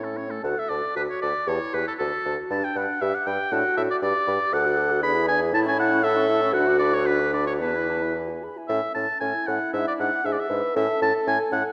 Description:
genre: quick classical-period movement for wind quintet.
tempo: 117 BPM.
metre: 2/4.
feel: rubato.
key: D major, A major from 4.5 s.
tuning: A4 = 440 Hz.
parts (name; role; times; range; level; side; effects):
clear oboe; second line; 0.0-11.6 s; A4 to B5; -27 LUFS; equal; none.
mellow French horn; accompaniment; 0.0-11.7 s; A3 to B4; -33 LUFS; equal; none.
mellow clarinet; accompaniment; 0.0-11.6 s; C#4 to A4; -32 LUFS; equal; none.
clear bassoon; bass; 0.0-11.6 s; D2 to A2; -30 LUFS; equal; none.
mellow concert flute; melody; 0.4-11.7 s; D5 to F#6; -41 LUFS; equal; none.
room: wet concert hall reverb, RT60 2.1 s.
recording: none.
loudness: -24 LUFS.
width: mono.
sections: 0.4-8.7 A section; 8.7-11.7 B section.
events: none.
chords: 0.4 D; 1.5 A7/E; 2.0 D; 2.5 G5; 3.5 D/A; 4.0 G5; 4.5 D; 5.0 E7; 5.5 A; 6.5 Bm/D; 7.6 Esus4; 8.2 E; 8.7 A; 9.7 E7/G#; 10.8 A.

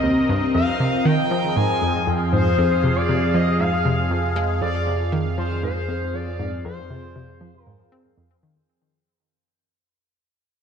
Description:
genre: ambient, sequencer-driven space music.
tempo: 118 BPM.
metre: 4/4.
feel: straight.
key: unclear.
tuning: A4 = 440 Hz.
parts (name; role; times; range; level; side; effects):
expressive synth lead; melody; 0.0-8.1 s; C5 to Ab5; -26 LUFS; left 2 dB; phaser, wide subtle chorus, ping-pong delay.
phased analog pad; sustained chords; 0.0-8.7 s; C3 to F5; -23 LUFS; equal; phaser, chorus.
analog pluck; riff; 0.0-8.6 s; Eb2 to C4; -24 LUFS; equal; chorus, ping-pong delay.
analog drone; bass; 0.0-8.7 s; C2 to F2; -27 LUFS; equal; chorus.
room: moderate plate reverb, RT60 2.6 s.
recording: dark, warm production.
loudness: -18 LUFS.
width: side -7 dB against mid.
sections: 0.0-8.7 A section.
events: fade-out 3.3-8.7.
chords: 0.0 Cm7; 0.6 Fm.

